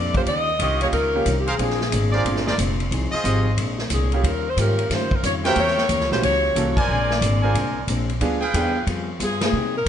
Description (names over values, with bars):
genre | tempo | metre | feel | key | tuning
jazz, big band swing | 181 BPM | 4/4 | swing 64% on 8ths | unclear | A4 = 441 Hz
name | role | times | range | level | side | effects
warm saxophone section | melody | 0.0-9.9 s | G4 to Eb5 | -23 LUFS | left 2 dB | none
hollow-body jazz guitar | accompaniment | 0.0-9.8 s | Bb2 to Ab4 | -29 LUFS | left 4 dB | none
upright bass | bass | 0.0-9.9 s | F1 to C3 | -24 LUFS | equal | none
swinging big-band drum kit | drums | 0.1-9.9 s | hi-hat, kick drum, ride cymbal, snare drum | -26 LUFS | equal | none
bright upright piano | accompaniment | 0.2-8.7 s | Bb3 to A4 | -29 LUFS | right 4 dB | none
clear trumpet section | stabs | 0.6-8.8 s | F4 to Ab5 | -26 LUFS | right 1 dB | none
room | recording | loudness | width
light reverb | nothing above 10.4 kHz | -19 LUFS | side -9 dB against mid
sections
0.0-9.9 A section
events
band accent 6.7, 9.4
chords
0.3 Eb9; 1.6 Bb9; 2.9 Fm7; 3.6 Bb9; 4.2 Eb9; 5.6 Edim7; 6.9 Bb9; 8.2 G7b9